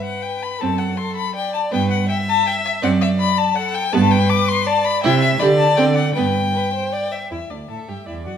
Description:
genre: quick classical-period movement for string quartet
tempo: 161 BPM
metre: 3/4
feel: straight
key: G major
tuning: A4 = 443 Hz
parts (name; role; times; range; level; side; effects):
- warm violin; melody; 0.0-8.4 s; D5 to D6; -21 LUFS; left 7 dB; none
- dark violin; second line; 0.0-8.3 s; D4 to E5; -23 LUFS; left 1 dB; none
- rich viola; accompaniment; 0.6-8.4 s; B3 to E5; -22 LUFS; right 4 dB; none
- warm cello; bass; 0.6-8.4 s; D2 to D3; -21 LUFS; right 4 dB; none
room: wet recital hall reverb, RT60 1.4 s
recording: none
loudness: -16 LUFS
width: side -8 dB against mid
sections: 0.0-7.3 A section; 7.3-8.4 A section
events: none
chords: 0.0 G; 0.6 D7/F#; 1.7 G; 2.8 D7/F#; 3.9 G; 5.0 C; 5.4 G5/D; 5.8 D7; 6.2 G; 7.3 G5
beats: 0.24 | 0.61 0.98 1.35 | 1.72 2.09 2.46 | 2.83 3.20 3.56 | 3.93 4.30 4.67 | 5.04 5.41 5.78 | 6.16 6.55 6.93 | 7.32 7.70 8.08

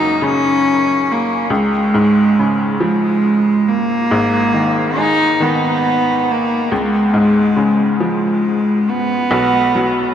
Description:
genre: pop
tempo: 46 BPM (dotted quarters)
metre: 6/8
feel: straight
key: unclear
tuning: A4 = 441 Hz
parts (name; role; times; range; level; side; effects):
- warm cello; melody; 0.0-10.1 s; G#3 to D#4; -14 LUFS; equal; analog delay
- bright upright piano; accompaniment; 0.0-10.1 s; F#1 to G#3; -19 LUFS; left 1 dB; none
room: wet huge ambient reverb, RT60 8.6 s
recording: dreamy mix soaked in reverb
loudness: -13 LUFS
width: side -9 dB against mid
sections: 0.0-10.1 A section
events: none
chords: 0.0 F#; 1.5 C#; 4.1 G#m; 6.7 C#; 9.3 B5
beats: 0.20 | 1.50 2.80 | 4.11 5.41 | 6.71 8.01 | 9.31

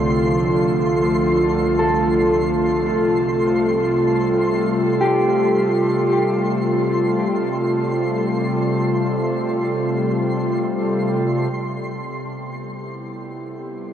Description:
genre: ambient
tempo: free time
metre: none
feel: none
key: unclear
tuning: A4 = 441 Hz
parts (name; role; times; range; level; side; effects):
- airy breathy pad; sustained chords; 0.0-13.9 s; C2 to A4; -18 LUFS; equal; chorus, shimmer reverb
- organ-like drone; drone; 0.0-13.9 s; C3 to G3; -36 LUFS; equal; none
- twinkling granular texture; texture; 0.0-11.6 s; C6; -30 LUFS; equal; built-in reverb, shimmer reverb
- mellow electric guitar; arpeggios; 1.8-7.5 s; G4 to A4; -24 LUFS; equal; tape echo, shimmer reverb
room: wet cathedral reverb, RT60 5.8 s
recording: worn, warbling old tape, cassette tape, warbly pitch drift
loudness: -17 LUFS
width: side -9 dB against mid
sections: 0.0-11.5 A section; 11.5-13.9 B section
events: none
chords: 0.0 Dm/C; 2.9 Fadd9/C; 11.5 Cmaj7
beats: free time

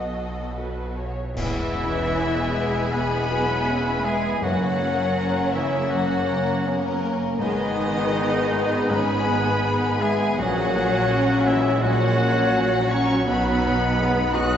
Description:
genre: cinematic, emotional film score for orchestra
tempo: 81 BPM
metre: 4/4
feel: uneven beats, rubato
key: F# mixolydian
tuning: A4 = 438 Hz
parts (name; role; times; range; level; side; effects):
- rich symphonic violin section; melody; 0.0-14.6 s; D#5 to F#6; -30 LUFS; left 3 dB; none
- rich symphonic violin section; second line; 0.0-14.6 s; A#3 to B4; -30 LUFS; left 1 dB; none
- rich symphonic viola section; accompaniment; 0.0-14.6 s; E3 to D#5; -30 LUFS; equal; none
- warm concert grand piano; accompaniment; 0.0-14.6 s; A#1 to D#5; -29 LUFS; equal; none
- concert harp; arpeggios; 0.0-14.6 s; E2 to B5; -32 LUFS; left 4 dB; none
- rich studio double bass section; bass; 0.0-14.6 s; E1 to B1; -29 LUFS; right 2 dB; none
- rich symphonic cello section; bass; 0.0-14.6 s; B2 to F#4; -29 LUFS; right 2 dB; none
- clear oboe; second line; 1.4-14.6 s; D#4 to F#5; -31 LUFS; right 1 dB; none
- hollow concert flute; second line; 1.4-14.6 s; B4 to D#6; -29 LUFS; left 2 dB; none
- mellow French horn section; sustained chords; 1.4-14.6 s; F#3 to A#4; -29 LUFS; left 3 dB; none
- clash cymbals and concert bass drum; percussion; 1.4-2.9 s; none; -35 LUFS; equal; none
- timpani; percussion; 4.4-5.5 s; F#2; -35 LUFS; right 1 dB; none
room: wet scoring stage reverb, RT60 1.7 s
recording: heard from further back in the room, nothing above 7.8 kHz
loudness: -20 LUFS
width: side -9 dB against mid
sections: 0.0-1.4 A section; 1.4-14.6 B section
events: band accent 1.4-2.1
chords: 0.0 B7; 1.4 E; 4.4 F#; 7.4 G#m; 10.4 F#/A#; 13.3 B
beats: 0.57 | 1.37 2.14 2.93 3.67 | 4.42 5.17 5.92 6.67 | 7.40 8.13 8.90 9.64 | 10.38 11.10 11.82 12.54 | 13.27 13.98

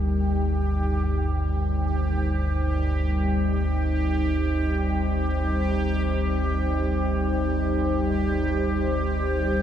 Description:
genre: dark ambient drone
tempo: free time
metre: none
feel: none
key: unclear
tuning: A4 = 444 Hz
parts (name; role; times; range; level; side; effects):
- deep dark ambient pad; sustained chords; 0.0-9.6 s; G3 to C5; -26 LUFS; equal; chorus, built-in reverb
- deep rumbling drone; drone; 0.0-9.6 s; G1 to D2; -25 LUFS; equal; built-in reverb, wide subtle chorus
- bubbling stepped-filter texture; texture; 0.0-9.6 s; G4; -32 LUFS; right 2 dB; chorus, built-in reverb
room: wet cathedral reverb, RT60 5.8 s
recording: dark, warm production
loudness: -22 LUFS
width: side -10 dB against mid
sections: 0.0-9.6 A section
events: filter sweep on synth drone 0.0-9.6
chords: 0.0 Eb6/G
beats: free time

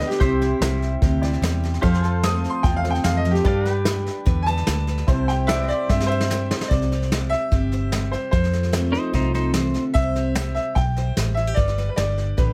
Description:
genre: honky-tonk and classic country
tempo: 148 BPM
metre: 4/4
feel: straight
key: C major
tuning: A4 = 443 Hz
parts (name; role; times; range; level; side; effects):
- bright upright piano; melody; 0.0-12.5 s; G4 to Eb6; -28 LUFS; equal; none
- honky-tonk upright piano; accompaniment; 0.0-6.7 s; D4 to D5; -36 LUFS; equal; none
- picked steel-string acoustic guitar; accompaniment; 0.0-12.5 s; C3 to C5; -29 LUFS; equal; none
- soft brush drum kit; drums; 0.0-12.5 s; hi-hat, kick drum, snare drum; -26 LUFS; equal; none
- pedal steel guitar; sustained chords; 0.2-6.7 s; G4 to G5; -34 LUFS; equal; none
- vintage muted fingered electric bass; bass; 0.2-12.5 s; G1 to G2; -25 LUFS; equal; none
- pedal steel guitar; second line; 8.9-9.8 s; Eb4 to C5; -29 LUFS; equal; none
room: light reverb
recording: close, detailed microphones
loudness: -21 LUFS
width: mono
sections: 0.0-6.7 A section; 6.7-12.5 B section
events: upright piano solo 0.0-6.7; drum fill 5.9-6.7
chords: 0.2 C; 1.8 F; 3.5 G; 5.1 C; 8.3 F; 9.9 C; 11.6 G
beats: | 0.20 0.61 1.02 1.43 | 1.83 2.24 2.64 3.05 | 3.46 3.86 4.27 4.67 | 5.08 5.49 5.89 6.30 | 6.71 7.11 7.52 7.92 | 8.33 8.73 9.14 9.54 | 9.95 10.36 10.76 11.17 | 11.57 11.98 12.38

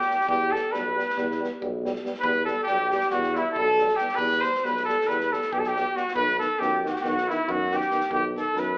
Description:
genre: balkan folk, Balkan brass band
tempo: 276 BPM (eighths)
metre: 9/8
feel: straight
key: E harmonic minor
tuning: A4 = 435 Hz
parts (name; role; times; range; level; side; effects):
- mellow cornet; melody; 0.0-8.8 s; E4 to C5; -25 LUFS; equal; none
- bright trumpet; second line; 0.0-8.8 s; E4 to C5; -27 LUFS; equal; none
- natural country drum kit; percussion; 0.0-8.6 s; kick drum, snare drum; -42 LUFS; equal; none
- dark euphonium; accompaniment; 0.1-8.6 s; B3; -36 LUFS; equal; none
- mellow euphonium; accompaniment; 0.1-8.6 s; D#3 to G3; -34 LUFS; equal; none
- warm tuba; bass; 0.3-8.8 s; B1 to F#2; -32 LUFS; equal; none
room: wet large studio reverb, RT60 0.9 s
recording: band playing live in one room, AM radio sound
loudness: -22 LUFS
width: side -32 dB against mid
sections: 0.0-8.8 A section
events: none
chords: 0.0 Em; 6.1 B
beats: 0.06 | 0.27 0.49 0.71 0.93 1.14 1.36 1.58 1.79 2.01 | 2.23 2.45 2.66 2.88 3.10 3.31 3.53 3.75 3.97 | 4.19 4.40 4.62 4.84 5.06 5.27 5.49 5.71 5.93 | 6.14 6.36 6.58 6.80 7.02 7.24 7.45 7.67 7.89 | 8.11 8.32 8.54 8.76

